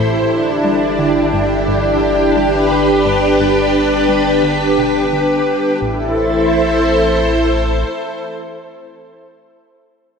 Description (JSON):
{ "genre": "ambient, sequencer-driven space music", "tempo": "87 BPM", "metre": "4/4", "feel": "straight", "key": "A minor", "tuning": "A4 = 444 Hz", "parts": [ { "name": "string machine, full ensemble", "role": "sustained chords", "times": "0.0-9.2 s", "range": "D4 to C5", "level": "-13 LUFS", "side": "equal", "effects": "ensemble chorus" }, { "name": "hollow square pluck", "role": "riff", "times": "0.0-6.1 s", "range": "G2 to G3", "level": "-24 LUFS", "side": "left 1 dB", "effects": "chorus, phaser, ping-pong delay" }, { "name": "round analog bass", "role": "bass", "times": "0.0-7.8 s", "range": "G1 to A1", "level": "-25 LUFS", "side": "equal", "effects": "none" }, { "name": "pulsing gated texture", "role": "texture", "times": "0.0-5.8 s", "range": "G4", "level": "-30 LUFS", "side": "right 4 dB", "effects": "none" } ], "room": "wet plate reverb, RT60 3.1 s", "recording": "dreamy mix soaked in reverb", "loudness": "-12 LUFS", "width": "side -6 dB against mid", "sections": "0.0-5.8 A section; 5.8-8.6 B section", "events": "fade-out on synth arpeggio sound 0.0-5.8; fade-out on analog synth bass 0.0-5.8", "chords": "0.3 G; 5.8 Am", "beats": "| 0.29 0.98 1.67 2.36 | 3.05 3.74 4.43 5.12 | 5.81 6.50 7.19 7.88" }